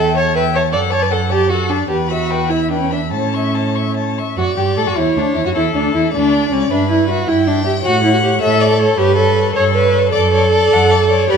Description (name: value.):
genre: quick classical-period movement for string quartet.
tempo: 104 BPM (dotted quarters).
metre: 6/8.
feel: rubato.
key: D major.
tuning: A4 = 435 Hz.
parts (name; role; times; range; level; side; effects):
warm violin; melody; 0.0-11.4 s; C#4 to C#6; -21 LUFS; left 10 dB; none.
rich violin; second line; 0.0-11.4 s; A4 to G5; -21 LUFS; left 4 dB; none.
rich viola; accompaniment; 0.0-11.4 s; C#4 to D5; -16 LUFS; right 2 dB; none.
warm cello; bass; 0.0-11.4 s; C#2 to A2; -19 LUFS; right 5 dB; none.
room: moderate recital hall reverb, RT60 1.8 s.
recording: minimal, uncompressed stereo recording.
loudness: -13 LUFS.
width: side -6 dB against mid.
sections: 0.0-4.4 A section; 4.4-11.4 B section.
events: none.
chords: 0.0 A7/E; 0.7 D/F#; 1.9 Em; 3.1 A; 4.4 D/F#; 5.0 Dmaj9; 5.6 D5; 6.7 Em/G; 7.9 A; 9.0 A7/G; 10.1 D/F#.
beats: 0.17 | 0.73 1.30 | 1.89 2.49 | 3.12 3.75 | 4.37 4.97 | 5.55 6.13 | 6.71 7.28 | 7.86 8.43 | 8.99 9.56 | 10.14 10.72 | 11.31.